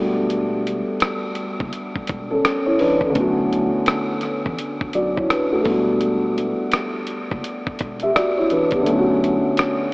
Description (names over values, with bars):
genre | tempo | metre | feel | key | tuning
lo-fi hip hop | 84 BPM | 4/4 | swing 61% on 16ths | E dorian | A4 = 440 Hz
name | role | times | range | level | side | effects
felt-muted upright piano | accompaniment | 0.0-9.9 s | D3 to E5 | -19 LUFS | equal | cassette tape
saturated sub bass | bass | 0.0-9.4 s | E1 to B1 | -31 LUFS | equal | none
dusty soul sampler-style drum kit | drums | 0.3-9.8 s | hi-hat, kick drum, rim click | -25 LUFS | equal | none
room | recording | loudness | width
wet huge ambient reverb, RT60 7.9 s | dreamy mix soaked in reverb, AM radio sound | -18 LUFS | side -27 dB against mid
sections
0.0-9.9 A section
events
kick muted 8.9-9.9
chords
0.0 Em11; 3.2 Bm9; 5.7 Em11; 8.9 Bm9